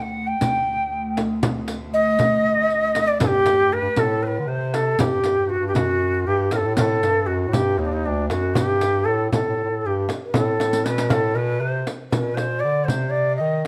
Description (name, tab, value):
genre	Turkish makam ensemble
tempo	236 BPM (eighths)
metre	7/8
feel	straight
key	D makam hicaz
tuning	A4 = 440 Hz
part	ney	melody	0.0-13.6 s	D4 to G5	-23 LUFS	equal	none
part	rich chamber cello section	drone	0.0-4.0 s	D2	-30 LUFS	equal	none
part	frame drum	percussion	0.4-13.7 s	none	-27 LUFS	equal	none
part	riq	percussion	0.4-13.0 s	none	-33 LUFS	equal	none
part	clear bass clarinet	second line	3.2-13.7 s	D2 to Eb3	-28 LUFS	equal	none
room	moderate recital hall reverb, RT60 1.5 s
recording	close, detailed microphones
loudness	-21 LUFS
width	mono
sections	0.0-4.0 A section; 4.0-13.7 B section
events	drum fill 10.6-11.1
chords	none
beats	0.15 | 0.41 0.66 0.92 1.17 1.43 1.68 1.94 | 2.19 2.44 2.70 2.95 3.21 3.46 3.71 | 3.97 4.22 4.48 4.73 4.99 5.24 5.50 | 5.75 6.01 6.26 6.52 6.77 7.03 7.28 | 7.54 7.79 8.04 8.30 8.55 8.81 9.06 | 9.32 9.57 9.83 10.08 10.34 10.59 10.85 | 11.10 11.36 11.61 11.87 12.12 12.38 12.63 | 12.88 13.14 13.39 13.65